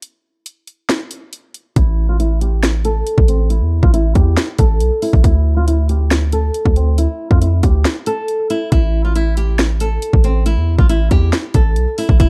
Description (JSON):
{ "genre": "hip hop, trap", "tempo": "138 BPM", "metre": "4/4", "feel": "half-time", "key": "A minor", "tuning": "A4 = 439 Hz", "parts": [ { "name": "trap drum kit", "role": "drums", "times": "0.0-12.3 s", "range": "hi-hat, kick drum, snare drum", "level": "-17 LUFS", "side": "equal", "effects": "overdrive" }, { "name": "flamenco guitar", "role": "melody", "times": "1.8-12.3 s", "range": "C4 to A4", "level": "-23 LUFS", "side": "equal", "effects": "low-pass filter" }, { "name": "hard-hitting 808-style bass", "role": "bass", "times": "1.8-12.3 s", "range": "E1 to F2", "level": "-17 LUFS", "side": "equal", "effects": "none" } ], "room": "little or no reverb", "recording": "dark, warm production", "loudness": "-15 LUFS", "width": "mono", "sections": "0.0-12.3 A section", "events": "break 0.0-1.8, 7.9-8.7; filter sweep on nylon-string guitar 0.0-8.7", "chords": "0.0 N.C.; 1.8 A5; 5.2 D5; 8.7 A5" }